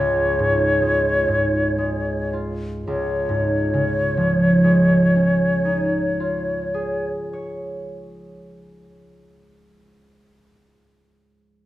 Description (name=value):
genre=classical, impressionist duo for flute and harp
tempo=51-75 BPM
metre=3/4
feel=rubato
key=Db major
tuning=A4 = 439 Hz
part: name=hollow concert flute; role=melody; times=0.0-7.1 s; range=Db5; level=-21 LUFS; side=left 1 dB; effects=none
part: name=concert harp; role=accompaniment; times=0.0-10.3 s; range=Db2 to Db5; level=-20 LUFS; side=right 1 dB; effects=none
room=wet recital hall reverb, RT60 1.2 s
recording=dark, warm production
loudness=-18 LUFS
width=side -15 dB against mid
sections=0.0-2.9 A section; 2.9-8.9 B section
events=slowing down 0.0-2.9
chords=0.0 Db; 2.9 Dbadd9